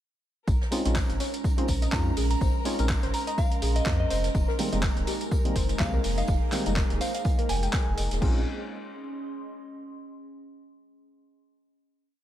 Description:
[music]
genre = deep house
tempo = 124 BPM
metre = 4/4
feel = swing 56% on 16ths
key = Bb minor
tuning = A4 = 440 Hz
[part]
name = sub bass with octave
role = bass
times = 0.5-8.4 s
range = Eb1 to F2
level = -28 LUFS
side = equal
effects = sidechain pumping
[part]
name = dusty soul sampler-style drum kit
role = drums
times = 0.5-8.3 s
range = crash cymbal, handclaps, hi-hat, tambourine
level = -35 LUFS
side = equal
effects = overdrive
[part]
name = electronic kick drum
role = drums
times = 0.5-8.3 s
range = none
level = -26 LUFS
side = equal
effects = overdrive
[part]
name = jazz brush drum kit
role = drums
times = 0.5-8.2 s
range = hi-hat, snare drum, tambourine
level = -43 LUFS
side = right 1 dB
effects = high-pass filter on hats, high-pass filter on snare, high-pass filter on perc, high-pass filter on room
[part]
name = rich chamber violin section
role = texture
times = 0.5-8.2 s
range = Bb4 to Bb5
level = -42 LUFS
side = equal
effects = none
[part]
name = warbly tape-like pad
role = texture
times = 0.5-10.1 s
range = Ab3 to C6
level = -38 LUFS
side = right 4 dB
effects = chorus, built-in reverb, sidechain pumping
[part]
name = warbly dusty pluck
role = arpeggios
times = 0.7-8.4 s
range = G4 to G5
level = -37 LUFS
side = left 4 dB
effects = chorus, sidechain pumping, analog delay
[part]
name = percussive organ stab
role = stabs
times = 0.7-8.4 s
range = Eb3 to Bb4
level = -33 LUFS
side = equal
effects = chorus, cassette tape, sidechain pumping, analog delay
[part]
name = soft synth bell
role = melody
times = 1.9-8.0 s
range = Eb5 to Bb5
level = -35 LUFS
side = equal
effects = chorus, analog delay
[part]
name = soft string machine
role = sustained chords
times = 4.7-8.4 s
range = Ab3 to Ab4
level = -37 LUFS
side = equal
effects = phaser, ensemble chorus, sidechain pumping
[sound]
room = light reverb, small room reverb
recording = none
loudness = -24 LUFS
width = side -12 dB against mid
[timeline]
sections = 0.5-8.2 drop; 8.2-10.2 final chord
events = drop 0.5-8.2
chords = 0.5 Bbm11; 4.1 Fm11; 8.2 Bbm11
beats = | 0.48 0.96 1.44 1.93 | 2.41 2.90 3.38 3.86 | 4.35 4.83 5.32 5.80 | 6.28 6.77 7.25 7.73 | 8.22 8.70 9.19 9.67

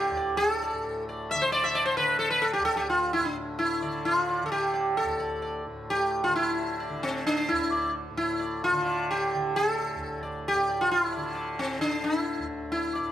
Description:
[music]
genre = indian classical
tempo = 131 BPM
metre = 5/4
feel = straight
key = D raga kafi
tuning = A4 = 440 Hz
[part]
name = sitar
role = melody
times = 0.0-13.1 s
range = C4 to E5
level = -25 LUFS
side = equal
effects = none
[part]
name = tanpura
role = drone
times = 0.0-13.1 s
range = D2 to D3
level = -35 LUFS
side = equal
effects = none
[sound]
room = moderate recital hall reverb, RT60 1.5 s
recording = none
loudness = -25 LUFS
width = side -11 dB against mid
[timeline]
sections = 0.0-13.1 A section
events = none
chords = none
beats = | 0.39 0.85 1.31 1.77 2.23 | 2.69 3.15 3.61 4.07 4.53 | 4.98 5.44 5.90 6.35 6.81 | 7.27 7.72 8.18 8.63 9.09 | 9.54 10.00 10.45 10.91 11.36 | 11.81 12.27 12.72

